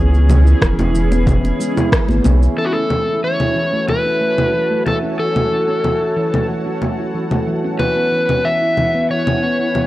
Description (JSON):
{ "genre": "organic downtempo", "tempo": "92 BPM", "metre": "4/4", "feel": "straight", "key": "F# minor", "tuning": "A4 = 441 Hz", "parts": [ { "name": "overdriven slide guitar", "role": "melody", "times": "0.0-9.9 s", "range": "F#4 to E5", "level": "-19 LUFS", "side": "left 1 dB", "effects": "analog delay" }, { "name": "granular cloud pad", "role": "sustained chords", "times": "0.0-9.9 s", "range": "C#4 to A5", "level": "-25 LUFS", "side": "right 1 dB", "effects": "built-in reverb, vintage 12-bit sampler grit, sidechain pumping" }, { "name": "handpan", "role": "arpeggios", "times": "0.0-9.9 s", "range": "E3 to E4", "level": "-21 LUFS", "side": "equal", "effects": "low-pass filter, analog delay" }, { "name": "round analog bass", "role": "bass", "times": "0.0-2.5 s", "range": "E1 to C#2", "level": "-13 LUFS", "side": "equal", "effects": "sidechain pumping" }, { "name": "bronze singing bowl", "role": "texture", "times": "0.0-9.9 s", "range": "B3 to E5", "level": "-32 LUFS", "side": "right 2 dB", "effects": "none" }, { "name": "electronic shaker, congas and rim click", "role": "drums", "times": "0.1-9.9 s", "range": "none", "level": "-20 LUFS", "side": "left 1 dB", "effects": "overdrive" }, { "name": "congas", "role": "percussion", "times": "0.3-2.4 s", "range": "none", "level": "-25 LUFS", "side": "right 1 dB", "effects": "none" }, { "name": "electronic kick drum", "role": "drums", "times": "0.6-2.1 s", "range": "none", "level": "-18 LUFS", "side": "equal", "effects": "overdrive" } ], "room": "light reverb", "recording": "dry, gritty hardware recording, cassette tape", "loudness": "-14 LUFS", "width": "side -16 dB against mid", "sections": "0.0-2.6 A section; 2.6-9.9 B section", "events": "band accent 1.9-2.3; filter sweep on handpan 2.6-9.9", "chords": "0.0 E6; 2.6 F#m7; 7.8 E6" }